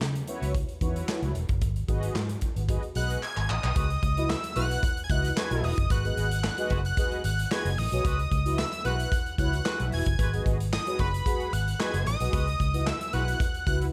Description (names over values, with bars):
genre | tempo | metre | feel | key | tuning
early-eighties boogie funk | 112 BPM | 4/4 | straight | C# minor | A4 = 440 Hz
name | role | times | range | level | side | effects
vintage muted fingered electric bass | bass | 0.0-13.9 s | E1 to C#3 | -31 LUFS | equal | none
modern studio drum kit | drums | 0.0-13.9 s | handclaps, hi-hat, kick drum, snare drum | -32 LUFS | equal | gated reverb
mellow synth brass | accompaniment | 0.3-13.9 s | D#4 to F#5 | -37 LUFS | equal | chorus
fat analog lead | melody | 3.0-13.8 s | B5 to G#6 | -34 LUFS | equal | chorus, slapback echo
mellow horn section | second line | 3.8-13.2 s | G#3 to B4 | -38 LUFS | equal | none
room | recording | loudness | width
studio ambience | none | -28 LUFS | mono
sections
0.0-3.8 A section; 3.8-13.9 B section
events
drum fill 3.2-3.8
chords
0.0 C#m11; 1.6 G#m7; 3.8 C#m11; 5.9 G#m7; 8.0 C#m11; 10.2 G#m7; 12.3 C#m11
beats
0.01 0.55 1.08 | 1.62 2.15 2.69 3.23 | 3.76 4.30 4.83 5.37 | 5.90 6.44 6.97 7.51 | 8.05 8.58 9.12 9.65 | 10.19 10.72 11.26 11.80 | 12.33 12.87 13.40